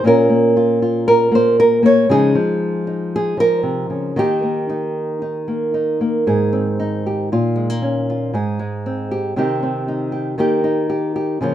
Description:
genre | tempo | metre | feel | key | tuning
folk, solo fingerstyle acoustic guitar | 116 BPM | 4/4 | rubato | Ab major | A4 = 440 Hz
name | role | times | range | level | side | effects
nylon-string guitar | solo | 0.0-11.5 s | Ab2 to Db5 | -15 LUFS | equal | none
room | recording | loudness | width
light reverb | minimal, uncompressed stereo recording | -15 LUFS | side -11 dB against mid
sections
0.0-6.3 A section; 6.3-11.5 B section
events
none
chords
0.0 Bbm; 2.1 Dbadd9; 4.2 Eb; 6.3 Ab; 7.3 Bbm; 8.3 Abmaj7; 9.3 Cm; 10.4 Eb

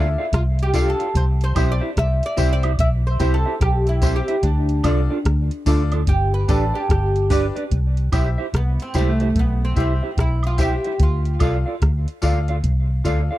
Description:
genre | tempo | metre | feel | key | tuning
roots reggae | 73 BPM | 4/4 | swing 62% on 16ths | C major | A4 = 438 Hz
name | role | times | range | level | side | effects
oud | melody | 0.0-13.4 s | A3 to E5 | -25 LUFS | equal | tape echo
mellow electric guitar | accompaniment | 0.0-13.4 s | D4 to F5 | -27 LUFS | right 4 dB | lush chorus, tape echo
bright upright piano | stabs | 0.0-13.4 s | C4 to F5 | -28 LUFS | left 8 dB | none
vintage muted fingered electric bass | bass | 0.0-13.3 s | G1 to D2 | -20 LUFS | equal | none
soft vintage rhythm box | drums | 0.3-13.3 s | hi-hat, kick drum, rim click | -22 LUFS | equal | none
tambourine and woodblock | percussion | 0.7-13.3 s | none | -33 LUFS | right 5 dB | none
room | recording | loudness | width
little or no reverb | dry, close 1970s-style studio recording | -17 LUFS | side -15 dB against mid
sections
0.0-7.7 A section; 7.7-13.4 B section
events
oud solo 0.0-7.7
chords
0.0 Dm; 1.1 C; 4.4 Dm; 6.1 G; 7.7 C; 11.0 Dm

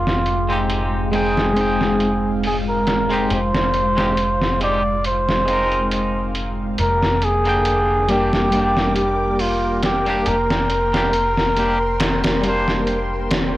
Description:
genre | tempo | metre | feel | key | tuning
trip hop | 69 BPM | 4/4 | swing 55% on 16ths | F dorian | A4 = 440 Hz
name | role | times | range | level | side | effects
trumpet with cup mute | melody | 0.0-12.9 s | F4 to D5 | -20 LUFS | equal | tape echo
string machine, cellos | sustained chords | 0.0-13.6 s | Ab3 to D6 | -26 LUFS | equal | ensemble chorus, vintage 12-bit sampler grit
deep dub fingered electric bass | bass | 0.0-13.6 s | F1 | -25 LUFS | equal | none
trip hop sampler-style drum kit | drums | 0.1-13.5 s | hi-hat, snare drum | -23 LUFS | equal | low-pass filter on hats, low-pass filter on snare, low-pass filter on room
twangy electric guitar | accompaniment | 0.5-13.6 s | D3 to G5 | -22 LUFS | equal | harmonic tremolo, vintage 12-bit sampler grit
room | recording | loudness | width
little or no reverb | dry, gritty hardware recording, cassette tape | -16 LUFS | side -16 dB against mid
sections
0.0-13.6 A section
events
filter sweep on string machine 0.0-13.6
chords
0.0 Fm7; 6.8 Gm/F

